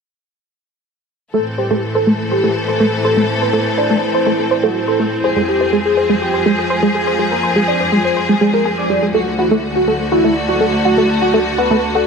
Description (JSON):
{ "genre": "techno", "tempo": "123 BPM", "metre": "4/4", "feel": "straight", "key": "unclear", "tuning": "A4 = 440 Hz", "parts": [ { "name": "wide unison lead", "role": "melody", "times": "1.3-12.1 s", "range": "E4 to D5", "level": "-18 LUFS", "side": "equal", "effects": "wide subtle chorus, digital delay" }, { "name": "clear studio string section", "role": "sustained chords", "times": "1.3-12.1 s", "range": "D2 to A4", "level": "-19 LUFS", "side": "left 1 dB", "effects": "none" }, { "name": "tight sequenced synth", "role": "arpeggios", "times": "1.3-12.1 s", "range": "G3 to C5", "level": "-17 LUFS", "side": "right 1 dB", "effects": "chorus, phaser, dub echo" }, { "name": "warbly tape-like pad", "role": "texture", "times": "1.8-12.1 s", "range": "E4 to A5", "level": "-23 LUFS", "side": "equal", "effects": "chorus, built-in reverb, phaser" } ], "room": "moderate lush hall reverb, RT60 2.9 s", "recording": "none", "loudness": "-13 LUFS", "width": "side -5 dB against mid", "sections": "1.3-12.1 A section", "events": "filter sweep on analog synth lead 1.3-12.1", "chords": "1.3 Am; 5.2 Fm; 9.1 D" }